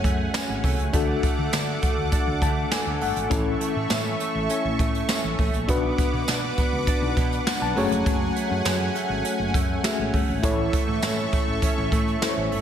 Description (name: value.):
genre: 1980s-style pop.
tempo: 101 BPM.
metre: 4/4.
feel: straight.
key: A major.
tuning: A4 = 439 Hz.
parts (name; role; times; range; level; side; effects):
FM electric piano with auto-pan; accompaniment; 0.0-12.6 s; A3 to A5; -28 LUFS; left 4 dB; none.
lush unison pad; sustained chords; 0.0-12.6 s; A4 to D6; -29 LUFS; equal; chorus.
direct-recorded clean electric guitar; riff; 0.0-12.6 s; E3 to D4; -30 LUFS; right 5 dB; ensemble chorus, ping-pong delay.
woody fretless electric bass; bass; 0.0-12.6 s; F1 to D3; -29 LUFS; equal; analog chorus.
jazz brush drum kit; drums; 0.0-12.6 s; hi-hat, kick drum, snare drum, tambourine; -25 LUFS; equal; gated reverb.
room: light reverb, small room ambience.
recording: none.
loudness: -21 LUFS.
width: side -9 dB against mid.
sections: 0.0-12.6 A section.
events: FM electric piano fill 2.1-3.3, 7.2-8.1.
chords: 0.0 F#madd9; 0.9 D; 3.3 A; 5.7 Bm; 7.8 F#madd9; 10.4 A.